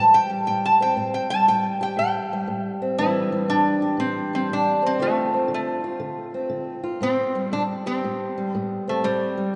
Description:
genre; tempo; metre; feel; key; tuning
acoustic country blues, solo or duo; 119 BPM; 4/4; swing 65% on 8ths; A minor; A4 = 440 Hz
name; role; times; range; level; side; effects
lap resonator guitar; melody; 0.0-9.6 s; G3 to A5; -24 LUFS; equal; none
fingerpicked old ladder-braced acoustic guitar; accompaniment; 0.0-9.6 s; A2 to G4; -28 LUFS; equal; none
room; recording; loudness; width
wet church reverb, RT60 3.7 s; recorded in a church or concert hall, nothing above 11.0 kHz; -23 LUFS; mono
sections
0.0-3.0 A section; 3.0-9.6 B section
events
resonator guitar played with a steel bar solo 0.0-3.0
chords
0.0 Am7; 5.0 Dm7; 7.0 Am7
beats
0.47 | 0.97 1.48 1.98 2.48 | 2.99 3.50 4.00 4.51 | 5.01 5.52 6.03 6.53 | 7.04 7.54 8.05 8.55 | 9.06

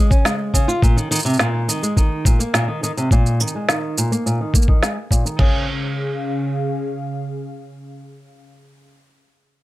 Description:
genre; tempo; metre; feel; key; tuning
folktronica; 105 BPM; 4/4; straight; Db major; A4 = 440 Hz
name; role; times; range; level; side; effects
warm analog pad; sustained chords; 0.0-8.4 s; Db3 to F5; -28 LUFS; equal; chorus
nylon-string guitar; arpeggios; 0.0-5.7 s; Bb2 to F4; -20 LUFS; equal; low-pass filter, digital delay
electronic shaker and snare drum; drums; 0.1-5.4 s; none; -21 LUFS; right 1 dB; overdrive
lo-fi sampler-style drum kit; drums; 0.1-5.5 s; crash cymbal, kick drum, toms; -16 LUFS; equal; none
room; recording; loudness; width
light reverb; none; -16 LUFS; side -17 dB against mid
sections
0.0-5.4 A section; 5.4-7.7 B section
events
filter sweep on nylon-string guitar 0.0-5.4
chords
0.0 Db; 0.8 Abadd9; 5.4 Db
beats
0.25 | 0.82 1.39 1.96 2.54 | 3.11 3.68 4.25 4.82 | 5.39 5.96 6.54 7.11

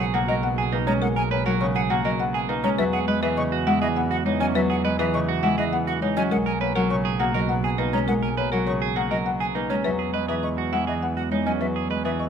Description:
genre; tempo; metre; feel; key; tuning
classical, minimalist pattern music; 102 BPM; 3/4; straight; B major; A4 = 440 Hz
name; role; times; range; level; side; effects
folk marimba with medium mallets; melody; 0.0-12.3 s; A#4 to F#5; -28 LUFS; left 6 dB; none
Celtic harp; accompaniment; 0.0-12.3 s; C#3 to C#4; -25 LUFS; equal; none
hollow concert flute; arpeggios; 0.0-12.3 s; D#5 to C#6; -32 LUFS; left 2 dB; none
semi-hollow electric guitar; arpeggios; 0.0-12.2 s; C#4 to B4; -28 LUFS; right 11 dB; none
clear double bass; bass; 0.0-12.3 s; B1 to E2; -29 LUFS; right 3 dB; none
room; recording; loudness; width
moderate scoring stage reverb, RT60 1.8 s; close, detailed microphones; -21 LUFS; side -7 dB against mid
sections
0.0-12.3 A section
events
none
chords
0.0 Bmaj9; 2.8 Emaj9; 6.3 Bmaj9; 9.8 Emaj9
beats
0.43 | 1.02 1.61 2.20 | 2.78 3.37 3.96 | 4.55 5.14 5.73 | 6.31 6.90 7.49 | 8.08 8.67 9.26 | 9.84 10.43 11.02 | 11.61 12.20

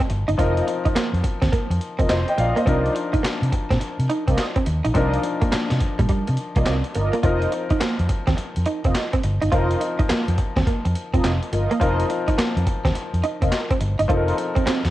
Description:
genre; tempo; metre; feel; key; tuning
R&B, new jack swing; 105 BPM; 4/4; swing 64% on 16ths; unclear; A4 = 440 Hz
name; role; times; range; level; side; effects
clear concert grand piano; accompaniment; 0.0-14.9 s; F3 to G5; -27 LUFS; left 3 dB; none
direct-recorded clean electric guitar; riff; 0.0-14.8 s; G3 to F4; -25 LUFS; right 3 dB; lush chorus
vintage muted fingered electric bass; bass; 0.1-14.9 s; F1 to C3; -22 LUFS; equal; none
boom bap sampler-style drum kit; drums; 0.1-14.9 s; handclaps, hi-hat, kick drum, snare drum; -23 LUFS; equal; cassette tape
mellow synth brass; stabs; 0.4-14.4 s; F4 to Eb5; -30 LUFS; equal; chorus, tape echo
room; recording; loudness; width
light reverb, digital ambience; home recording on cassette; -19 LUFS; side -15 dB against mid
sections
0.0-14.9 A section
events
none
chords
0.0 F7sus4; 2.7 Cm11; 7.2 F7sus4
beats
| 0.38 0.95 1.52 2.10 | 2.67 3.24 3.81 4.38 | 4.95 5.52 6.10 6.67 | 7.24 7.81 8.38 8.95 | 9.52 10.10 10.67 11.24 | 11.81 12.38 12.95 13.52 | 14.10 14.67

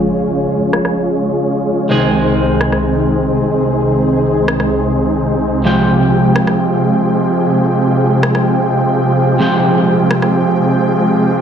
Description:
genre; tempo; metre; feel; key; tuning
EDM, festival progressive house; 128 BPM; 4/4; straight; F minor; A4 = 441 Hz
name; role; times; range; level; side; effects
electric guitar at the edge of break-up; accompaniment; 0.0-11.4 s; C3 to G5; -18 LUFS; right 1 dB; ping-pong delay
lush unison pad; sustained chords; 0.0-11.4 s; C2 to G5; -18 LUFS; equal; chorus
supersaw chords; riff; 0.0-11.4 s; C3 to Db5; -14 LUFS; equal; low-pass filter, ping-pong delay
electronic rim click; drums; 0.7-10.3 s; none; -20 LUFS; equal; overdrive, low-pass filter on hats, studio reverb, low-pass filter on cymbals, low-pass filter on snare, low-pass filter on toms
room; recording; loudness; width
moderate recital hall reverb, RT60 1.3 s; none; -11 LUFS; side -8 dB against mid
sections
0.0-11.4 A section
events
filter sweep on drum 0.0-11.4; filter sweep on analog synth pad 0.0-11.4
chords
0.0 Db; 1.9 Ab/C; 5.7 Fmadd9/C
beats
| 0.03 0.50 0.96 1.43 | 1.90 2.37 2.84 3.31 | 3.78 4.25 4.71 5.18 | 5.65 6.12 6.59 7.06 | 7.53 8.00 8.46 8.93 | 9.40 9.87 10.34 10.81 | 11.28

